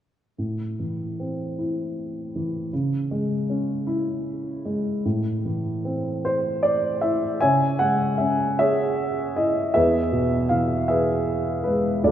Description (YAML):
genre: classical, lyrical solo piano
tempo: 51 BPM (dotted quarters)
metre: 6/8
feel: rubato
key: unclear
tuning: A4 = 440 Hz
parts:
  - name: dark upright piano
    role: solo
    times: 0.4-12.1 s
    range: D2 to G#5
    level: -21 LUFS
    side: equal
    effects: none
room: moderate concert hall reverb, RT60 2.5 s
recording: minimal, uncompressed stereo recording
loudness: -21 LUFS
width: side -10 dB against mid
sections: 0.4-5.0 A section; 5.0-12.1 B section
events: none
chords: 0.4 Am; 2.7 C#m; 5.0 Am; 7.4 C#m; 9.8 E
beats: | 0.38 1.58 | 2.72 3.86 | 5.04 6.23 | 7.41 8.60 | 9.75 10.88 | 12.04